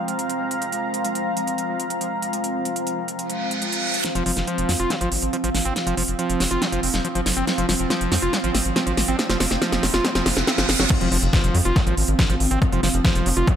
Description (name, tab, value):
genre	psychedelic trance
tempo	140 BPM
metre	4/4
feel	straight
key	F minor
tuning	A4 = 440 Hz
part	pulsing gated texture	sustained chords	0.0-13.6 s	F3 to C4	-29 LUFS	right 2 dB	chorus, built-in reverb, sidechain pumping
part	deep dark ambient pad	texture	0.0-13.6 s	C4 to C6	-28 LUFS	equal	chorus, built-in reverb, sidechain pumping
part	big-room dance drum kit	drums	0.1-13.6 s	crash cymbal, hi-hat, snare drum	-24 LUFS	equal	none
part	reverse cymbal, riser and impact	sound effects	3.3-12.6 s	none	-29 LUFS	right 2 dB	none
part	screaming distorted acid line	riff	4.2-13.5 s	F3 to F4	-26 LUFS	moving between left 5 dB and right 4 dB	distortion, chorus, auto-pan, cassette tape, sidechain pumping, tape echo
part	round analog bass	bass	4.2-13.4 s	F1 to F2	-24 LUFS	equal	none
part	electronic kick drum	drums	10.9-13.6 s	none	-20 LUFS	equal	overdrive
room	moderate lush hall reverb, RT60 1.7 s, digital ambience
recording	none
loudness	-19 LUFS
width	side -9 dB against mid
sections	0.0-4.0 A section; 4.0-10.9 B section; 10.9-13.6 C section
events	reverse cymbal 3.3-4.0, 10.1-10.9; build-up 4.0-10.9; drum fill 4.0-10.9; drop 10.9-13.6; impact 10.9-12.6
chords	0.0 F5